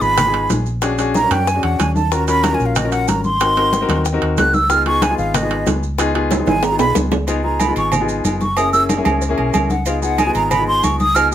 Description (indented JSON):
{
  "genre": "Afro-Cuban jazz",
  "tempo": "186 BPM",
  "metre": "4/4",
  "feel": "straight",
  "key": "Db mixolydian",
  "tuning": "A4 = 440 Hz",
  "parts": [
    { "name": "breathy concert flute", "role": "melody", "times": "0.0-11.3 s", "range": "Eb5 to Gb6", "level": "-17 LUFS", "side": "right 2 dB", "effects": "none" },
    { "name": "warm grand piano", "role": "accompaniment", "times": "0.0-11.3 s", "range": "Bb3 to Bb4", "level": "-21 LUFS", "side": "left 4 dB", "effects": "none" },
    { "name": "hollow-body short-scale fingered electric bass", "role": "bass", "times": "0.0-11.3 s", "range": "Gb1 to F#2", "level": "-22 LUFS", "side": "equal", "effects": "none" },
    { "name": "bongos and cowbell", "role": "percussion", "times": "0.0-11.3 s", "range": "none", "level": "-26 LUFS", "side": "left 8 dB", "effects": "none" },
    { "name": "congas", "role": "percussion", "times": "0.0-11.3 s", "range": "none", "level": "-23 LUFS", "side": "left 1 dB", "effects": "none" },
    { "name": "maracas", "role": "percussion", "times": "0.0-11.3 s", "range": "none", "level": "-31 LUFS", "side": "right 9 dB", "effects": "none" },
    { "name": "timbales and agogo bells", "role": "percussion", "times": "0.2-11.3 s", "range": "none", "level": "-22 LUFS", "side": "right 6 dB", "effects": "none" }
  ],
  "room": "light reverb",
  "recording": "none",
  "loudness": "-14 LUFS",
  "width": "side -11 dB against mid",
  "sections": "0.0-7.3 A section; 7.3-11.3 A section",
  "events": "flute solo 0.0-11.3; drum fill 6.3-7.3",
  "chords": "0.0 Db7 (rootless); 0.8 Bb7alt; 2.1 Ebm7; 3.4 Ab7; 4.7 Db7; 8.6 Gb7; 9.9 Db7"
}